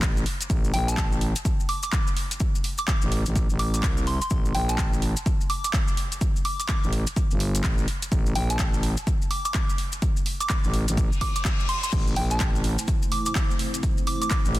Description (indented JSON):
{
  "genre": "bass house",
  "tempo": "126 BPM",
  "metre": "4/4",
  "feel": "swing 61% on 16ths",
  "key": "A phrygian",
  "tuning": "A4 = 439 Hz",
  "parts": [
    { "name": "growling FM bass", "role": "bass", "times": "0.0-14.6 s", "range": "G1 to C2", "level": "-25 LUFS", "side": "equal", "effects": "overdrive, sidechain pumping" },
    { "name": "big-room dance drum kit", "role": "drums", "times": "0.0-14.6 s", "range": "crash cymbal, handclaps, hi-hat", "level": "-32 LUFS", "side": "equal", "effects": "overdrive" },
    { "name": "electronic kick drum", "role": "drums", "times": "0.0-14.4 s", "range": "none", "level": "-25 LUFS", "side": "equal", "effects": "overdrive" },
    { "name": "maracas", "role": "percussion", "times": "0.0-14.5 s", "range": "none", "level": "-35 LUFS", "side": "left 3 dB", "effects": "none" },
    { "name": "soft synth bell", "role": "melody", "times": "0.7-14.4 s", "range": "G5 to D6", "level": "-31 LUFS", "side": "right 1 dB", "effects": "chorus, tape echo" },
    { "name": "reverse cymbal", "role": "sound effects", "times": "11.1-11.9 s", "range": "none", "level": "-34 LUFS", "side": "left 5 dB", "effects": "none" },
    { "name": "dark analog pad", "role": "sustained chords", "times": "12.7-14.6 s", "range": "A3 to C5", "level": "-33 LUFS", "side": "right 1 dB", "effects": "chorus, sidechain pumping" }
  ],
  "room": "little or no reverb",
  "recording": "dense, heavily limited modern master",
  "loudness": "-22 LUFS",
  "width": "side -16 dB against mid",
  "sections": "0.0-14.6 A section",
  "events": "reverse cymbal 11.1-11.9",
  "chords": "0.0 Am"
}